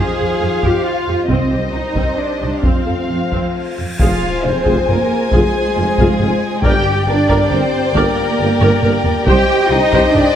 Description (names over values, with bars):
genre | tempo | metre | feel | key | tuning
cinematic, epic orchestral film score | 136 BPM | 3/4 | straight | unclear | A4 = 441 Hz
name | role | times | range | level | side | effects
dark symphonic violin section | melody | 0.0-10.4 s | Ab4 to G5 | -21 LUFS | left 3 dB | none
warm studio violin section | second line | 0.0-10.4 s | C5 to Ab5 | -23 LUFS | left 2 dB | none
dark studio viola section | accompaniment | 0.0-10.2 s | C4 to D5 | -22 LUFS | equal | none
mellow French horn section | sustained chords | 0.0-10.4 s | Eb3 to D5 | -23 LUFS | left 6 dB | none
dark symphonic cello section | bass | 0.0-10.4 s | Ab3 to Ab4 | -19 LUFS | right 3 dB | none
warm symphonic double bass section | bass | 0.0-10.2 s | F1 to F2 | -22 LUFS | right 2 dB | none
taiko ensemble | drums | 0.6-10.3 s | none | -19 LUFS | equal | none
timpani | percussion | 1.3-1.9, 6.6-7.3 s | G2 to C3 | -24 LUFS | left 1 dB | none
cymbal swell and impact | sound effects | 3.6-5.3 s | none | -28 LUFS | equal | none
mellow tuba | bass | 4.0-10.2 s | F1 to C2 | -23 LUFS | right 2 dB | none
room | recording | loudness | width
moderate scoring stage reverb, RT60 1.9 s | none | -13 LUFS | side -9 dB against mid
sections
0.0-4.0 A section; 4.0-10.4 B section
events
cymbal swell 3.6-4.0; impact 4.0-5.3; drum fill 8.6-9.3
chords
0.0 Fmadd9; 1.3 Cm; 2.6 F; 4.0 Fm; 6.6 Gm; 9.3 Cm